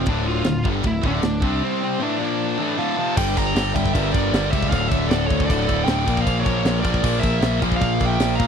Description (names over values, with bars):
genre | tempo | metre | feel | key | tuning
heavy metal | 155 BPM | 4/4 | straight | D minor | A4 = 440 Hz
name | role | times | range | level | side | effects
high-gain lead guitar | melody | 0.0-8.5 s | C4 to Bb5 | -26 LUFS | equal | distortion, tape echo
distorted electric guitar | riff | 0.0-8.5 s | D2 to C4 | -27 LUFS | equal | overdrive
heavy high-gain guitar | riff | 0.0-8.5 s | D2 to C4 | -26 LUFS | left 12 dB | distortion
heavy high-gain guitar | riff | 0.0-8.5 s | D2 to C4 | -27 LUFS | right 14 dB | distortion
growling picked electric bass | bass | 0.0-8.5 s | D1 to Bb2 | -24 LUFS | equal | overdrive
tight metal drum kit | drums | 0.1-8.5 s | crash cymbal, kick drum, ride cymbal, snare drum | -24 LUFS | equal | none
high-gain lead guitar | second line | 2.8-8.5 s | A4 to G5 | -31 LUFS | right 5 dB | distortion
room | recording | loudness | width
little or no reverb | dry, close 1970s-style studio recording | -18 LUFS | side -7 dB against mid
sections
0.0-3.2 A section; 3.2-8.5 B section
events
none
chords
0.1 Dm; 1.4 C5; 2.0 D5; 2.2 Bb5; 2.6 Dm; 3.2 Gm; 4.7 D5; 6.1 Bb